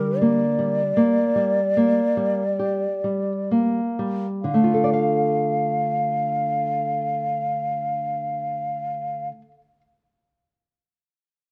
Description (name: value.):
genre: romantic duo for flute and classical guitar.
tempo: 31-41 BPM.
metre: 4/4.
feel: rubato.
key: D minor.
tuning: A4 = 440 Hz.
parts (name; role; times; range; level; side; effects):
mellow hollow concert flute; melody; 0.0-9.3 s; Bb4 to F5; -26 LUFS; equal; none.
nylon-string guitar; accompaniment; 0.0-9.8 s; D3 to F5; -25 LUFS; equal; none.
room: light reverb.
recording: close, detailed microphones.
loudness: -22 LUFS.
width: mono.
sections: 0.0-4.4 A section; 4.4-11.3 B section.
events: slowing down 0.0-4.4.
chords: 0.0 Gm/D; 4.4 Dm.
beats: 0.95 2.58 | 4.43 6.17 7.91 9.63.